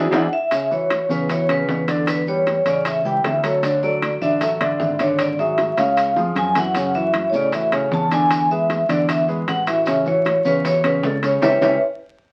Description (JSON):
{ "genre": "Afro-Cuban jazz", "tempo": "154 BPM", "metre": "4/4", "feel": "straight", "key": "unclear", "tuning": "A4 = 441 Hz", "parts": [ { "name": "vibraphone with medium mallets", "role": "melody", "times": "0.0-11.8 s", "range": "A4 to A5", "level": "-22 LUFS", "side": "equal", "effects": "none" }, { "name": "warm grand piano", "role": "accompaniment", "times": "0.0-11.7 s", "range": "C#3 to D5", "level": "-26 LUFS", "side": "equal", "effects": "none" }, { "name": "fretless electric bass", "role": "bass", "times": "0.0-11.8 s", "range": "G#1 to A2", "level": "-28 LUFS", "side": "equal", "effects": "none" }, { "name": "bongos", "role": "percussion", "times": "0.1-11.7 s", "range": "none", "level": "-32 LUFS", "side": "equal", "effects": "none" }, { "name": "maracas", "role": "percussion", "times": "0.1-11.7 s", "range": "none", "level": "-43 LUFS", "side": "equal", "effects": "none" }, { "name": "timbales", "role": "percussion", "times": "0.1-11.7 s", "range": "none", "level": "-28 LUFS", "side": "equal", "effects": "none" } ], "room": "moderate studio reverb, RT60 0.6 s", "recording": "very old 78 rpm record, vinyl crackle", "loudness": "-19 LUFS", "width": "mono", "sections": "0.5-12.3 A section", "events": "drum fill 0.0-0.5, 5.8-6.8; band accent 0.0-0.5, 11.4-12.3", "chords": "0.0 E7; 0.5 E7sus2; 2.1 Em7; 2.9 A7; 3.6 Dadd9; 5.2 E13/G#; 6.0 C#; 6.8 F#m7; 8.3 E7; 9.9 A6; 11.4 C#m7b5" }